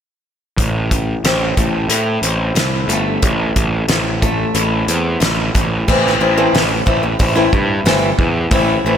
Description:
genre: quiet-loud alternative rock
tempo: 91 BPM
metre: 4/4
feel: straight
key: A minor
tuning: A4 = 443 Hz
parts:
  - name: picked swing-style acoustic guitar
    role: arpeggios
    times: 0.6-9.0 s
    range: A2 to E4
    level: -18 LUFS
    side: left 1 dB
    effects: slapback echo
  - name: fuzz picked electric bass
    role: bass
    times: 0.6-9.0 s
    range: G1 to A2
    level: -18 LUFS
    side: equal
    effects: overdrive
  - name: loose indie drum kit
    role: drums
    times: 0.6-8.7 s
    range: crash cymbal, hi-hat, kick drum, snare drum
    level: -18 LUFS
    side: equal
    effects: none
room: moderate lush hall reverb, RT60 2.6 s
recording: big arena sound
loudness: -13 LUFS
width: side -8 dB against mid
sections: 0.6-5.9 A section; 5.9-9.0 B section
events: none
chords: 0.6 Am; 5.6 N.C.; 5.9 Am

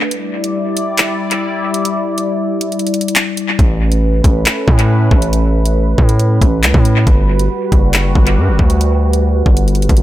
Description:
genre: hip hop, drill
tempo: 138 BPM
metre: 4/4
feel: half-time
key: unclear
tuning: A4 = 439 Hz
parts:
  - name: sweeping resonant pad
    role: sustained chords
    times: 0.0-10.0 s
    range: G3 to D5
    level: -18 LUFS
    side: left 1 dB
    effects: chorus
  - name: drill drum kit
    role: drums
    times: 0.1-10.0 s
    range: handclaps, hi-hat, kick drum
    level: -13 LUFS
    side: equal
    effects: analog delay
  - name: distorted 808-style bass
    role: bass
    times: 3.6-10.0 s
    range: F#1 to A2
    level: -13 LUFS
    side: equal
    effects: distortion
room: little or no reverb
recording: echo-heavy mix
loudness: -11 LUFS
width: side -14 dB against mid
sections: 0.0-10.0 A section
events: break 0.0-3.6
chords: 0.1 Em7; 3.6 Aadd9; 7.1 Gmaj7

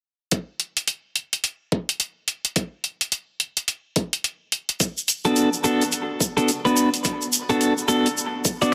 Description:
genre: glitch hop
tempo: 107 BPM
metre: 4/4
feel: swing 61% on 16ths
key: unclear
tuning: A4 = 441 Hz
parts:
  - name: electronic hi-hat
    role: drums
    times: 0.3-8.7 s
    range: none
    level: -25 LUFS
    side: equal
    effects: overdrive, soft clipping on snare
  - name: electronic kick drum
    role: drums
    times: 0.3-8.6 s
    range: none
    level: -26 LUFS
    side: equal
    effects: overdrive, high-pass filter on kick, high-pass filter on room
  - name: tube shaker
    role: percussion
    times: 4.8-8.7 s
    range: none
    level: -27 LUFS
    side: equal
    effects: none
  - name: clean electric guitar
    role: stabs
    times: 5.3-8.7 s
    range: B3 to D5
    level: -22 LUFS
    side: equal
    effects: sidechain pumping, dub echo
room: moderate plate reverb, RT60 2.7 s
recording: dense, heavily limited modern master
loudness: -23 LUFS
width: mono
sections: 0.3-8.7 A section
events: none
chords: 0.3 N.C.; 4.8 Bm7

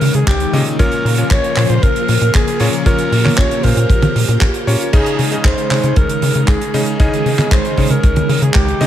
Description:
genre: italo disco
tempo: 116 BPM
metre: 4/4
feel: straight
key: unclear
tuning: A4 = 442 Hz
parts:
  - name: breathy alto saxophone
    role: melody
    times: 0.0-8.9 s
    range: G4 to Db5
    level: -20 LUFS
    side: equal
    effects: ping-pong delay
  - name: phased string machine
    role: sustained chords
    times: 0.0-8.9 s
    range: Db3 to Bb4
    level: -20 LUFS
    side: equal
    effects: ensemble chorus, phaser
  - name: bright electric grand piano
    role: stabs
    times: 0.0-8.9 s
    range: Bb2 to Eb5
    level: -22 LUFS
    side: left 2 dB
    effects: none
  - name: tight sequencer bass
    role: bass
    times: 0.0-8.9 s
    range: Bb1 to Db3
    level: -16 LUFS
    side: equal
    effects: none
  - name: damped 70s drum kit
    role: drums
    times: 0.0-8.9 s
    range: crash cymbal, handclaps, hi-hat, toms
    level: -20 LUFS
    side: right 2 dB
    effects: gated reverb
  - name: kick drum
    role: drums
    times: 0.3-8.7 s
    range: none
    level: -14 LUFS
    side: equal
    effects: none
room: small room ambience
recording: none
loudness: -12 LUFS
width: side -11 dB against mid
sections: 0.0-8.9 A section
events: none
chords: 0.0 Dbsus2; 0.8 Bbm; 4.9 Dbsus2

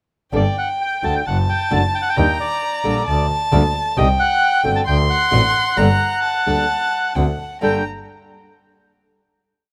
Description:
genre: tango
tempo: 132 BPM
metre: 4/4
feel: rubato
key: G harmonic minor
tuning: A4 = 440 Hz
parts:
  - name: warm violin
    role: second line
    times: 0.3-7.8 s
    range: F#5 to C6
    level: -23 LUFS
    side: equal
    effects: none
  - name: nylon-string guitar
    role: accompaniment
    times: 0.3-7.8 s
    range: G2 to A4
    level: -24 LUFS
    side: equal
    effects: none
  - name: warm double bass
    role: bass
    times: 0.3-7.8 s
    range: F#1 to Eb2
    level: -22 LUFS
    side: equal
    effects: none
  - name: bandoneon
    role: melody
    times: 0.4-7.8 s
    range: D5 to A5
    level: -23 LUFS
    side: equal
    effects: none
room: light reverb, small room ambience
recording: rough home demo mix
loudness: -18 LUFS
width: mono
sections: 0.3-7.6 A section; 7.6-9.5 final chord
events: none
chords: 0.3 Gsus2; 1.3 D/F#; 2.2 Ebmaj7; 3.1 Gsus2/D (rootless); 4.0 Cm; 4.9 D7; 5.8 Gmadd9; 7.2 D7; 7.6 Gmadd9

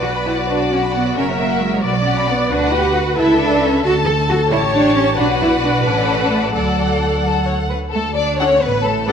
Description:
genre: quick classical-period movement for string orchestra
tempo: 89 BPM (dotted quarters)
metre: 6/8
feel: straight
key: D major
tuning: A4 = 440 Hz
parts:
  - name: rich chamber violin section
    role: melody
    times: 0.0-9.1 s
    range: D5 to A5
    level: -24 LUFS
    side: left 3 dB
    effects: none
  - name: rich chamber violin section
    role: second line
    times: 0.0-9.1 s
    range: F#4 to B5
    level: -20 LUFS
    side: left 4 dB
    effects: none
  - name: rich symphonic viola section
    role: accompaniment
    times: 0.0-9.1 s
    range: D4 to D5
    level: -21 LUFS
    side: equal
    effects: none
  - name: clear chamber double bass section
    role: bass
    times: 0.0-9.1 s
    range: F#1 to D2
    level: -22 LUFS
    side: right 3 dB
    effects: none
  - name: warm chamber cello section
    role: bass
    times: 0.0-9.1 s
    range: F#3 to A4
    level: -19 LUFS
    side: right 2 dB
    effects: none
room: wet scoring stage reverb, RT60 1.5 s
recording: none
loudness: -14 LUFS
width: side -7 dB against mid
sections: 0.0-8.0 A section; 8.0-9.1 B section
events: none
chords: 0.0 Bm; 1.2 F#7; 1.8 Bm; 2.5 D; 3.2 A/C#; 3.8 D; 4.5 A7; 5.2 Bm; 5.9 A; 6.6 D; 8.0 D5

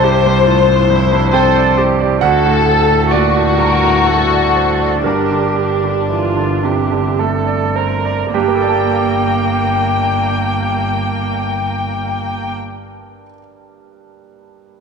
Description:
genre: neoclassical piano and strings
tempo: 51-69 BPM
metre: 3/4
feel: rubato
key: G minor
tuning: A4 = 441 Hz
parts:
  - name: muted chamber violin section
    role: melody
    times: 0.0-12.5 s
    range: D4 to G5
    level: -16 LUFS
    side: left 7 dB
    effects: none
  - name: bright concert grand piano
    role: accompaniment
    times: 0.0-14.8 s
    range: C2 to A5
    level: -17 LUFS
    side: right 8 dB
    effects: none
  - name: muted viola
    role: accompaniment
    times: 0.0-12.5 s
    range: Bb3 to Bb4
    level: -19 LUFS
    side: right 7 dB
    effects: none
  - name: muted double bass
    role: bass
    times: 0.0-12.5 s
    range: G1 to D2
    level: -19 LUFS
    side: left 2 dB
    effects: none
room: wet echo chamber reverb, RT60 2.3 s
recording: 1960s-style stereo with parts hard left and right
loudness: -12 LUFS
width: side -6 dB against mid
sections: 0.0-8.3 A section; 8.3-11.8 B section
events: slowing down 0.9-8.3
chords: 0.0 Cadd9; 2.2 D; 5.0 Gmadd9

